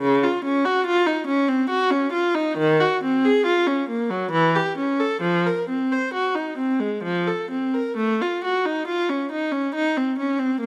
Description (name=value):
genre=classical, baroque-style suite movement for unaccompanied viola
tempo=62-72 BPM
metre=3/4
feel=rubato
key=unclear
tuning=A4 = 440 Hz
part: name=rich viola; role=solo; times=0.0-10.7 s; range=Db3 to C5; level=-22 LUFS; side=equal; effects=none
room=moderate recital hall reverb, RT60 1.3 s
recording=close, detailed microphones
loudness=-22 LUFS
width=mono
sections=0.0-8.0 A section; 8.0-10.7 B section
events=none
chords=none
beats=| 0.02 0.87 1.71 | 2.59 3.46 4.33 | 5.23 6.15 7.04 | 7.98 8.88 9.75 | 10.61